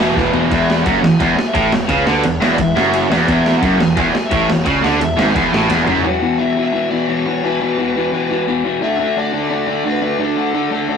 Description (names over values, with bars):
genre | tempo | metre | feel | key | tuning
punk rock | 173 BPM | 4/4 | straight | E mixolydian | A4 = 440 Hz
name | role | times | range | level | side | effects
smooth overdriven lead guitar | melody | 0.0-11.0 s | A4 to G#5 | -23 LUFS | left 1 dB | none
overdriven electric guitar | riff | 0.0-11.0 s | E2 to D4 | -17 LUFS | left 3 dB | none
tight distorted guitar | riff | 0.0-6.0 s | E2 to E3 | -20 LUFS | right 7 dB | distortion
tight distorted guitar | riff | 0.0-6.0 s | E2 to E3 | -18 LUFS | right 1 dB | distortion
fuzz picked electric bass | bass | 0.0-6.0 s | E1 to D2 | -22 LUFS | right 1 dB | overdrive
boom bap sampler-style drum kit | drums | 0.0-6.0 s | kick drum, ride cymbal, snare drum, toms | -20 LUFS | right 1 dB | none
room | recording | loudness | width
moderate small room reverb, RT60 0.6 s | rough rehearsal-room recording, tube saturation | -13 LUFS | side -6 dB against mid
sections
0.5-6.0 A section; 6.0-11.0 B section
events
drum fill 0.2-0.5, 5.7-6.0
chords
0.0 E5; 0.5 E; 6.0 E5; 8.8 D5